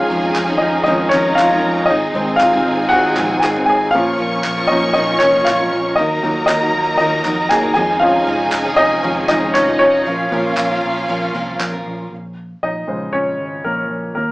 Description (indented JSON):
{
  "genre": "piano-driven pop",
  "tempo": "117 BPM",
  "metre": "4/4",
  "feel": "straight",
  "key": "Bb minor",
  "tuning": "A4 = 439 Hz",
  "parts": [
    { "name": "warm symphonic violin section", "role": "second line", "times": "0.0-12.1 s", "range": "Eb4 to Db6", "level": "-22 LUFS", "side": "equal", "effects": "none" },
    { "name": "warm upright piano", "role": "accompaniment", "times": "0.0-14.3 s", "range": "Db3 to Ab5", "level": "-15 LUFS", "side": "equal", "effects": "none" },
    { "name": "warm studio string section", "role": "sustained chords", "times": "0.0-12.1 s", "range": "F3 to Eb4", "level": "-24 LUFS", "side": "equal", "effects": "none" },
    { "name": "picked steel-string acoustic guitar", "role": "riff", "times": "0.0-12.1 s", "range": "F2 to Bb4", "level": "-24 LUFS", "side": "equal", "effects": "none" },
    { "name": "vintage muted fingered electric bass", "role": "bass", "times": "0.1-14.3 s", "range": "F1 to F2", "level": "-29 LUFS", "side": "equal", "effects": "none" },
    { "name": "group handclap", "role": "percussion", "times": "0.4-11.7 s", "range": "none", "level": "-24 LUFS", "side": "equal", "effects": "none" }
  ],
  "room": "wet studio reverb, RT60 0.5 s",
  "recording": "band playing live in one room, small speaker sound",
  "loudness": "-14 LUFS",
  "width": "side -20 dB against mid",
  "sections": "0.0-12.1 A section; 12.1-14.3 B section",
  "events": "upright piano solo 0.0-12.1, 12.1-14.3",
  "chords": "0.0 Dbadd9/F; 1.9 Ab; 3.9 Bbm; 6.0 Ebm; 7.8 Dbadd9/F; 10.1 Bbm; 12.1 Bbm7",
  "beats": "0.36 0.87 1.38 | 1.89 2.40 2.92 3.43 | 3.94 4.45 4.96 5.47 | 5.98 6.49 7.00 7.51 | 8.03 8.54 9.05 9.56 | 10.07 10.58 11.09 11.60 | 12.11 12.62 13.13 13.64 | 14.15"
}